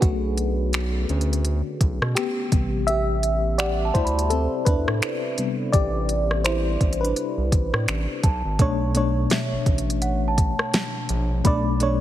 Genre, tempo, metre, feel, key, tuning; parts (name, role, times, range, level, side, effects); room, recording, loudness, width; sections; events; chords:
contemporary R&B; 84 BPM; 4/4; swing 58% on 16ths; B minor; A4 = 440 Hz
FM electric piano with auto-pan; accompaniment; 0.0-12.0 s; B2 to E5; -24 LUFS; left 1 dB
round analog bass; bass; 0.0-12.0 s; G#1 to B2; -25 LUFS; equal
smooth R&B drum kit; drums; 0.0-12.0 s; finger snaps, hi-hat, kick drum, rim click, snare drum; -23 LUFS; equal
celesta; texture; 3.6-12.0 s; E5 to B5; -31 LUFS; right 2 dB; digital delay
light reverb; heavily compressed radio sound; -20 LUFS; side -12 dB against mid
0.0-8.6 A section; 8.6-12.0 B section
FM electric piano solo 0.0-8.6
0.0 Bm9; 2.5 Am9; 8.2 G#m; 8.6 Bm9